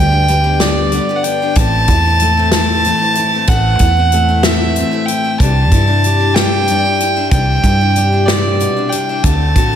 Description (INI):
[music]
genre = indie folk with a building arrangement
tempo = 63 BPM (dotted quarters)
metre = 6/8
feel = straight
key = unclear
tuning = A4 = 439 Hz
[part]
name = warm fiddle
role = melody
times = 0.0-9.8 s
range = D5 to A5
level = -15 LUFS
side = right 2 dB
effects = slapback echo, digital delay
[part]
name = fingerpicked steel-string acoustic guitar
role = accompaniment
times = 0.0-9.8 s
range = G2 to B4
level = -20 LUFS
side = left 3 dB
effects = slapback echo
[part]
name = picked steel-string acoustic guitar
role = accompaniment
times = 0.0-9.8 s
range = G2 to G4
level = -22 LUFS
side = left 7 dB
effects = slapback echo
[part]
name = hollow-body short-scale fingered electric bass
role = bass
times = 0.0-9.8 s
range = A1 to G2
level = -14 LUFS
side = right 1 dB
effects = none
[part]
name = natural country drum kit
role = drums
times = 0.3-9.7 s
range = hi-hat, kick drum, snare drum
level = -16 LUFS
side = equal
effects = none
[sound]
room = moderate lush hall reverb, RT60 2.4 s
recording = big arena sound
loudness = -11 LUFS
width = side -9 dB against mid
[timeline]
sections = 0.0-9.8 A section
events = none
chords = 0.0 G; 1.6 Am; 5.4 Cadd9; 9.2 D7